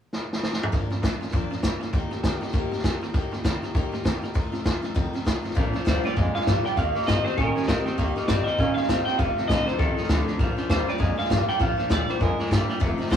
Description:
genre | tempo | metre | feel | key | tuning
rockabilly | 199 BPM | 4/4 | swing 60% on 8ths | Bb major | A4 = 435 Hz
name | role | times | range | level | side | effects
vintage drum kit | drums | 0.1-13.2 s | hi-hat, kick drum, snare drum, toms | -26 LUFS | equal | none
picked steel-string acoustic guitar | accompaniment | 0.7-13.2 s | F2 to G4 | -31 LUFS | left 3 dB | none
twangy electric guitar | riff | 0.7-13.2 s | F2 to Db4 | -30 LUFS | right 2 dB | none
upright bass | bass | 5.6-13.2 s | F1 to C3 | -27 LUFS | left 1 dB | none
electric guitar through a small old amp | melody | 5.9-13.2 s | A4 to G5 | -27 LUFS | equal | none
room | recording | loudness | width
wet small room reverb, RT60 0.6 s | rough rehearsal-room recording, tube saturation, small room ambience | -22 LUFS | side -9 dB against mid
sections
0.7-5.6 A section; 5.6-13.2 B section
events
drum fill 0.1-0.7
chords
0.0 N.C.; 0.7 Bb; 1.9 Eb; 4.4 F7; 5.6 Bb; 6.8 Eb; 9.2 F7; 10.4 Bb

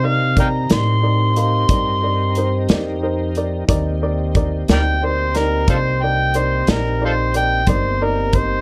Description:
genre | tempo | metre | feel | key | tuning
slow blues | 60 BPM (dotted quarters) | 12/8 | straight | unclear | A4 = 438 Hz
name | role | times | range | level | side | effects
overdriven harmonica | melody | 0.0-8.6 s | F4 to C6 | -22 LUFS | equal | none
dark baby grand piano | accompaniment | 0.0-8.6 s | Eb4 to F5 | -27 LUFS | equal | none
tonewheel organ | sustained chords | 0.0-8.6 s | G3 to Bb4 | -29 LUFS | equal | chorus vibrato, slow rotary speaker
upright bass | bass | 0.0-8.6 s | G1 to C3 | -22 LUFS | equal | none
natural country drum kit | drums | 0.4-8.5 s | hi-hat, kick drum, snare drum | -20 LUFS | equal | none
room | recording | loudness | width
light reverb | dark, warm production | -18 LUFS | mono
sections
0.0-8.6 A section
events
none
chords
0.0 Cm7

